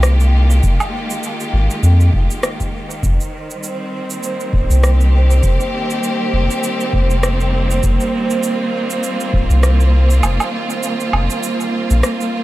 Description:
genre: ambient dub.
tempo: 100 BPM.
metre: 4/4.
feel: swing 57% on 16ths.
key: unclear.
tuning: A4 = 440 Hz.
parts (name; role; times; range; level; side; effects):
clear studio string section; sustained chords; 0.0-12.4 s; Eb3 to G4; -20 LUFS; right 1 dB; none.
round analog bass; bass; 0.0-12.0 s; Eb1 to F2; -12 LUFS; equal; tube saturation.
electronic rim click, cabasa and woodblock; drums; 0.0-12.3 s; none; -23 LUFS; right 1 dB; overdrive, studio reverb, dub echo.
electronic kick drum; drums; 0.6-9.5 s; none; -19 LUFS; equal; studio reverb.
wind-like tuned noise texture; texture; 3.3-12.4 s; C5; -26 LUFS; right 3 dB; built-in reverb.
room: little or no reverb.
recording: none.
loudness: -14 LUFS.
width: side -16 dB against mid.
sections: 0.0-12.4 A section.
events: break 10.2-12.4.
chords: 0.0 Fm11; 3.0 Cm7.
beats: 0.03 | 0.63 1.23 1.83 2.43 | 3.03 3.63 4.23 4.83 | 5.43 6.03 6.63 7.23 | 7.83 8.43 9.03 9.63 | 10.23 10.83 11.43 12.03.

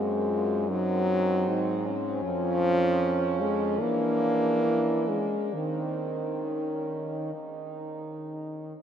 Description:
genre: classical, lyrical piece for horn quartet.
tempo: 65-79 BPM.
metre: 4/4.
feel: rubato.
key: unclear.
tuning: A4 = 440 Hz.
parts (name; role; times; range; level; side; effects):
mellow French horn; melody; 0.0-8.7 s; Db4 to Gb4; -35 LUFS; left 6 dB; none.
warm French horn; second line; 0.0-8.8 s; C4 to Eb4; -33 LUFS; right 6 dB; none.
mellow French horn; accompaniment; 0.0-8.2 s; Eb3 to A#3; -28 LUFS; left 1 dB; none.
warm French horn; bass; 0.0-8.7 s; F2 to E3; -34 LUFS; right 3 dB; none.
room: moderate huge ambient reverb, RT60 7.4 s.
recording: in a vast, echoing space, nothing above 10.4 kHz.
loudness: -25 LUFS.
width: side -8 dB against mid.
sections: 0.0-8.8 A section.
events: none.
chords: 0.0 Ab7/Gb; 2.2 Db/F; 3.8 E7#11; 5.5 Cm/Eb; 7.3 N.C..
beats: 0.69 1.47 | 2.23 3.01 3.80 4.64 | 5.54 6.45 7.34 8.22.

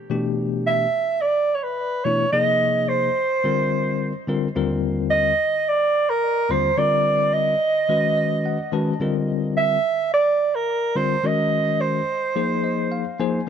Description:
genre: jazz.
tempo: 108 BPM.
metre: 4/4.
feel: straight.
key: unclear.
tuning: A4 = 441 Hz.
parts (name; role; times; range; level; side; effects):
bell-like tine electric piano; accompaniment; 0.1-13.5 s; Eb2 to A5; -23 LUFS; left 4 dB; medium stereo tremolo.
breathy soprano saxophone; melody; 0.7-13.2 s; Bb4 to E5; -20 LUFS; right 3 dB; none.
room: light reverb.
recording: dry, close 1970s-style studio recording.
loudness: -19 LUFS.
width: side -8 dB against mid.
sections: 0.1-13.5 A section.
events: tine electric piano fill 7.9-9.0, 12.4-13.5.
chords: 0.0 G69; 2.3 Fm7; 3.4 Bb69; 4.6 Ebmaj9; 6.8 Cm9; 7.9 Badd9; 9.0 Bbadd9; 11.2 Ebm7; 12.4 Ab69.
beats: | 0.09 0.65 1.21 1.76 | 2.32 2.88 3.44 3.99 | 4.55 5.11 5.67 6.22 | 6.78 7.34 7.90 8.45 | 9.01 9.57 10.13 10.68 | 11.24 11.80 12.36 12.91.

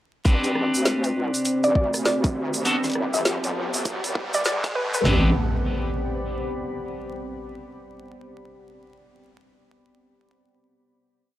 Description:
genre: glitch hop.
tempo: 100 BPM.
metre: 4/4.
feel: swing 62% on 16ths.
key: A dorian.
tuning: A4 = 440 Hz.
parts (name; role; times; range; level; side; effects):
electric guitar at the edge of break-up; stabs; 0.2-5.3 s; B3 to B4; -26 LUFS; left 1 dB; vintage 12-bit sampler grit, sidechain pumping, tape echo.
deep dark ambient pad; texture; 1.0-7.4 s; B3 to B5; -30 LUFS; equal; chorus, built-in reverb, sidechain pumping.
wobble bass; bass; 0.3-5.3 s; G1 to D2; -27 LUFS; equal; chorus, tube saturation, high-pass filter.
drum and bass drum kit; drums; 0.3-5.2 s; hi-hat, kick drum, snare drum, toms; -21 LUFS; equal; none.
drum and bass drum kit; drums; 0.3-5.0 s; hi-hat, rim click, snare drum; -26 LUFS; equal; none.
tube shaker; percussion; 0.3-5.0 s; none; -30 LUFS; right 2 dB; none.
riser and impact; sound effects; 1.6-7.5 s; none; -30 LUFS; equal; none.
woody wave-folded pluck; melody; 1.6-5.0 s; B4 to E5; -26 LUFS; equal; chorus, tape echo.
room: light reverb.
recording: dry, gritty hardware recording, vinyl crackle, high-pass filter.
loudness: -21 LUFS.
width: side -14 dB against mid.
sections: 0.3-5.1 build; 5.1-7.5 final chord.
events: build-up 0.3-5.1; riser 1.6-5.1.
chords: 0.3 Am11; 2.7 Gmaj9; 5.1 Am11 (rootless).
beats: | 0.26 0.85 1.46 2.06 | 2.65 3.25 3.85 4.46 | 5.05 5.66 6.25 6.86.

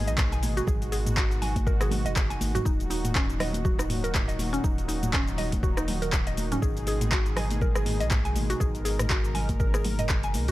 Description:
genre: afro house.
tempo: 121 BPM.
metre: 4/4.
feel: swing 57% on 16ths.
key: unclear.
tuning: A4 = 440 Hz.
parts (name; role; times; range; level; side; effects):
warm analog pad; sustained chords; 0.0-10.5 s; Bb2 to Bb4; -34 LUFS; equal; chorus, vintage 12-bit sampler grit, sidechain pumping.
warm sub bass; bass; 0.0-10.5 s; Eb1 to Db2; -30 LUFS; equal; tube saturation, sidechain pumping.
mallet-like synth pluck; arpeggios; 0.1-10.5 s; Db4 to Ab5; -33 LUFS; equal; chorus, sidechain pumping, tape echo.
afro-pop drum kit; drums; 0.1-10.5 s; handclaps, hi-hat, rim click, shaker, toms; -31 LUFS; equal; none.
congas; percussion; 0.1-10.5 s; none; -36 LUFS; equal; none.
electronic kick drum; drums; 0.2-10.2 s; none; -27 LUFS; equal; none.
room: little or no reverb.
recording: dry, gritty hardware recording.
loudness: -24 LUFS.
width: side -16 dB against mid.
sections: 0.0-10.5 A section.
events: none.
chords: 0.0 Abm; 2.7 Ebm; 6.6 Abm.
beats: 0.18 | 0.67 1.17 1.67 2.16 | 2.66 3.15 3.65 4.14 | 4.64 5.14 5.63 6.13 | 6.62 7.12 7.62 8.11 | 8.61 9.10 9.60 10.09.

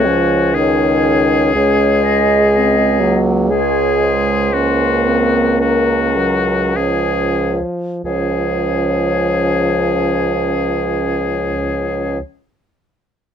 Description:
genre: classical, slow romantic movement for wind quintet.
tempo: 44-65 BPM.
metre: 3/4.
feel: rubato.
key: Db major.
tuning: A4 = 440 Hz.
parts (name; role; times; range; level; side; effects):
mellow silver concert flute; melody; 0.0-12.2 s; Bb4 to Eb5; -21 LUFS; left 4 dB; none.
bright oboe; second line; 0.0-12.2 s; Gb4 to Ab4; -20 LUFS; left 6 dB; none.
dark clarinet; accompaniment; 0.0-12.2 s; Ab3 to Db4; -23 LUFS; right 4 dB; none.
warm French horn; accompaniment; 0.0-12.2 s; Eb3 to Bb3; -18 LUFS; equal; none.
mellow bassoon; bass; 0.0-12.2 s; Db2; -18 LUFS; right 3 dB; none.
room: little or no reverb.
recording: close, detailed microphones.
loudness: -13 LUFS.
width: side -8 dB against mid.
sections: 0.0-8.1 A section; 8.1-11.7 B section.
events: slowing down 0.1-8.1.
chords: 0.0 Gb5/Db; 1.6 Db5; 4.5 Gb/Db; 8.1 Db.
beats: 0.54 | 1.55 2.52 3.50 | 4.52 5.60 6.76 | 8.05 9.28 10.50.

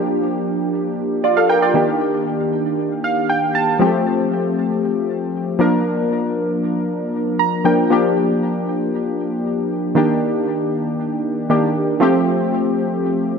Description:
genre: pop.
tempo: 117 BPM.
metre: 4/4.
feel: straight.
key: unclear.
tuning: A4 = 445 Hz.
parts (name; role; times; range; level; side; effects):
warm analog keys; solo; 0.0-13.4 s; Eb3 to Bb5; -16 LUFS; equal; chorus, ping-pong delay.
room: moderate lush hall reverb, RT60 2.7 s.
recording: none.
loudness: -16 LUFS.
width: side -6 dB against mid.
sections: 0.0-13.4 A section.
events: synth keys fill 2.8-3.8, 7.1-7.9.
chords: 0.0 Gm7; 1.8 Ebmaj7; 3.8 Fadd9; 5.6 Bb/F; 10.0 Ebmaj7; 12.0 Fadd9.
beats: 0.22 0.73 1.24 | 1.76 2.27 2.78 3.30 | 3.81 4.32 4.83 5.35 | 5.86 6.37 6.88 7.40 | 7.91 8.42 8.94 9.45 | 9.96 10.47 10.99 11.50 | 12.01 12.53 13.04.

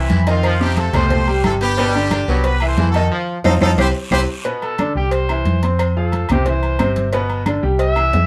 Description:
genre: latin, salsa.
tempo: 179 BPM.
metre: 4/4.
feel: straight.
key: G major.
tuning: A4 = 440 Hz.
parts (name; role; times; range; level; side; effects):
brilliant horn section; melody; 0.0-4.2 s; C4 to C5; -24 LUFS; equal; none.
bright upright piano; accompaniment; 0.0-8.2 s; B2 to C6; -23 LUFS; equal; none.
hollow-body short-scale fingered electric bass; bass; 0.0-8.3 s; G1 to F2; -21 LUFS; equal; none.
brilliant trombone section; second line; 0.1-4.3 s; C3 to G3; -28 LUFS; equal; none.
congas; percussion; 0.1-8.3 s; none; -26 LUFS; equal; none.
cowbell; percussion; 0.1-8.3 s; none; -29 LUFS; equal; none.
guiro; percussion; 0.1-4.2 s; none; -37 LUFS; equal; none.
agogo bells and timbales; percussion; 0.3-8.3 s; none; -30 LUFS; equal; none.
claves; percussion; 0.4-8.1 s; none; -33 LUFS; equal; none.
warm trumpet; melody; 4.6-8.3 s; G4 to E5; -24 LUFS; equal; none.
room: moderate studio reverb, RT60 0.5 s.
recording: band playing live in one room.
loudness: -17 LUFS.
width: mono.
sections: 0.0-4.5 A section; 4.5-8.3 B section.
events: drum fill 3.1-4.5; band accent 3.1-4.5; trumpet solo 4.5-8.3.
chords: 0.4 F7; 1.1 Cmaj7(no3); 1.8 Gmaj7; 2.4 Cmaj7; 3.1 F7; 3.8 Cmaj7; 4.5 G; 5.1 C; 5.8 F; 6.5 C; 7.1 G.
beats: 0.10 | 0.43 0.77 1.11 1.44 | 1.78 2.11 2.45 2.78 | 3.12 3.45 3.79 4.12 | 4.46 4.79 5.13 5.46 | 5.79 6.13 6.46 6.80 | 7.13 7.47 7.80 8.14.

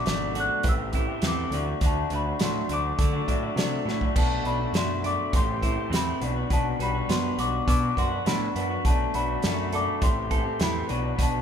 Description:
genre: indie rock.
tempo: 102 BPM.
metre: 4/4.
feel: straight.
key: G major.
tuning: A4 = 439 Hz.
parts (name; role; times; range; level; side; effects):
large celesta; melody; 0.0-11.4 s; A5 to F#6; -31 LUFS; left 2 dB; none.
electric guitar through a small old amp; riff; 0.0-11.4 s; E3 to G4; -30 LUFS; left 5 dB; none.
overdriven electric guitar; riff; 0.0-11.4 s; A2 to A4; -32 LUFS; right 7 dB; none.
growling picked electric bass; bass; 0.1-11.4 s; Ab1 to D3; -31 LUFS; equal; overdrive.
loose indie drum kit; drums; 0.1-11.3 s; crash cymbal, hi-hat, kick drum, snare drum; -27 LUFS; right 1 dB; none.
tonewheel organ; sustained chords; 4.2-11.4 s; A4 to C6; -41 LUFS; equal; slow rotary speaker.
room: moderate recital hall reverb, RT60 1.6 s.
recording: recorded in a church or concert hall.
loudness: -23 LUFS.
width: side -8 dB against mid.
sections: 0.0-4.2 A section; 4.2-11.4 A section.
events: drum fill 3.9.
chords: 0.0 Bm7; 0.6 Am7; 1.5 D; 4.2 Bm7; 5.3 Am7; 6.2 Gmaj7/B; 8.8 Bm7; 10.0 Am7; 10.9 Gmaj7/B (rootless).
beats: 0.06 0.65 1.23 | 1.82 2.40 2.99 3.57 | 4.16 4.75 5.33 5.92 | 6.50 7.09 7.67 8.26 | 8.85 9.43 10.02 10.60 | 11.19.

